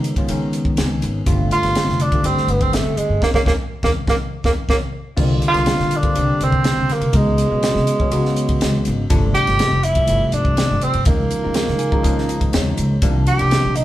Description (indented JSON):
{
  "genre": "electric jazz fusion",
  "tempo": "122 BPM",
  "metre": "4/4",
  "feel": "straight",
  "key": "unclear",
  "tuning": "A4 = 439 Hz",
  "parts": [
    { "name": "bell-like tine electric piano", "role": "accompaniment", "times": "0.0-13.8 s", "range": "C3 to Ab5", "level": "-22 LUFS", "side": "left 1 dB", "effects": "phaser" },
    { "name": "upright bass", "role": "bass", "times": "0.0-13.8 s", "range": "F1 to Eb3", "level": "-22 LUFS", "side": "equal", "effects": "none" },
    { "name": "crisp fusion drum kit", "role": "drums", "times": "0.0-13.8 s", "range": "crash cymbal, hi-hat, kick drum, ride cymbal, snare drum", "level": "-21 LUFS", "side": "equal", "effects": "none" },
    { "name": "warm tenor saxophone", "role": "melody", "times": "1.5-13.8 s", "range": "Ab3 to G4", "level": "-20 LUFS", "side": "right 2 dB", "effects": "none" }
  ],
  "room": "moderate stone room reverb, RT60 1.0 s",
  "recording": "band playing live in one room",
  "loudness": "-15 LUFS",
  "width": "side -14 dB against mid",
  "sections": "0.0-5.2 A section; 5.2-13.8 A section",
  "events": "tine electric piano fill 0.5-1.3, 4.2-5.2, 11.6-13.0; band accent 3.2-5.2",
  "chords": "0.0 Db7sus2; 1.3 G9sus4; 3.2 Eb5; 5.2 C9sus4; 7.1 Db9sus4; 9.1 G9sus4; 11.1 Eb9sus4; 13.0 C9sus4",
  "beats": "0.29 0.78 | 1.27 1.76 2.25 2.74 | 3.23 3.71 4.21 4.69 | 5.18 5.67 6.16 6.65 | 7.14 7.63 8.12 8.61 | 9.10 9.59 10.08 10.57 | 11.06 11.55 12.04 12.53 | 13.02 13.51"
}